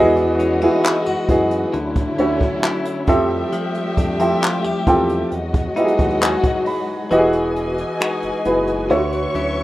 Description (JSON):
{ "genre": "contemporary R&B", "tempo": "67 BPM", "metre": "4/4", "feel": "straight", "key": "E major", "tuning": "A4 = 444 Hz", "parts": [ { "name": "warm baby grand piano", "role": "accompaniment", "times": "0.0-9.6 s", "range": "D3 to B5", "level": "-18 LUFS", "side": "right 1 dB", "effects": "none" }, { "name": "dark symphonic string section", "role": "sustained chords", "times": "0.0-9.6 s", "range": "D3 to C#6", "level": "-24 LUFS", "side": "left 1 dB", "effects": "none" }, { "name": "direct-recorded clean electric guitar", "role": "arpeggios", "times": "0.0-9.6 s", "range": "D3 to G4", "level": "-26 LUFS", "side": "left 3 dB", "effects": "analog delay" }, { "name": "smooth synth bass", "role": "bass", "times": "0.0-9.6 s", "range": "E1 to F#2", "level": "-28 LUFS", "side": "equal", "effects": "none" }, { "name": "jazz brush drum kit", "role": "drums", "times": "0.2-9.6 s", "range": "finger snaps, handclaps, hi-hat, kick drum", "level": "-21 LUFS", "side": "equal", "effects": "none" } ], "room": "light reverb", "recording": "rough home demo mix", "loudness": "-16 LUFS", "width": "side -16 dB against mid", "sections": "0.0-7.1 A section; 7.1-9.6 B section", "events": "grand piano fill 5.3-7.1; kick muted 7.1-9.6", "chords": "0.0 Emaj9; 1.7 Dmaj9; 3.1 Fmaj9; 5.3 Emaj9; 8.9 Dmaj9" }